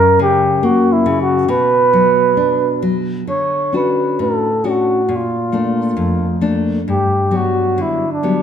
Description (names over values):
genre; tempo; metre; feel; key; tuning
fado-style ballad; 67 BPM; 2/4; rubato; B minor, D major from 3.3 s; A4 = 442 Hz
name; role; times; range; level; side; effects
trumpet with bucket mute; melody; 0.0-8.4 s; D4 to C#5; -15 LUFS; right 2 dB; none
nylon-string guitar; accompaniment; 0.0-8.4 s; F2 to F#4; -17 LUFS; left 2 dB; none
room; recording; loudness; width
wet recital hall reverb, RT60 1.4 s; none; -13 LUFS; side -8 dB against mid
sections
0.0-3.3 A section; 3.3-8.4 B section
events
none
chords
0.0 F#; 1.5 Bm; 3.3 Dmaj7; 5.1 Bbmaj7; 6.9 Gmaj7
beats
0.63 | 1.49 2.37 | 3.28 4.20 | 5.11 6.00 | 6.89 7.79